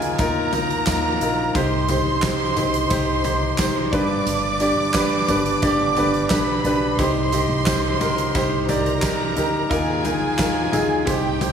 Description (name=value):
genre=piano-driven pop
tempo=88 BPM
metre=4/4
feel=straight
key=C minor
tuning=A4 = 442 Hz
part: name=warm studio violin section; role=second line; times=0.0-11.5 s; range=G4 to D6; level=-24 LUFS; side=right 3 dB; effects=digital delay
part: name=warm concert grand piano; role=accompaniment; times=0.0-11.5 s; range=G2 to Eb5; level=-21 LUFS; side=left 1 dB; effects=none
part: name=upright bass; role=bass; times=0.0-11.5 s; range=G1 to Eb2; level=-27 LUFS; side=right 1 dB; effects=none
part: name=huge arena drum kit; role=drums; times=0.0-11.5 s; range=handclaps, hi-hat, kick drum, snare drum, toms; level=-25 LUFS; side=equal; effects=none
part: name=tambourine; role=percussion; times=0.2-11.5 s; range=none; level=-37 LUFS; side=right 11 dB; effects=none
room=light reverb, small room ambience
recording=studio reverb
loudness=-18 LUFS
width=side -7 dB against mid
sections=0.0-11.5 A section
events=none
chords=0.0 Ebsus2; 1.6 Cm; 3.9 G; 7.0 Cm; 9.7 Ebsus2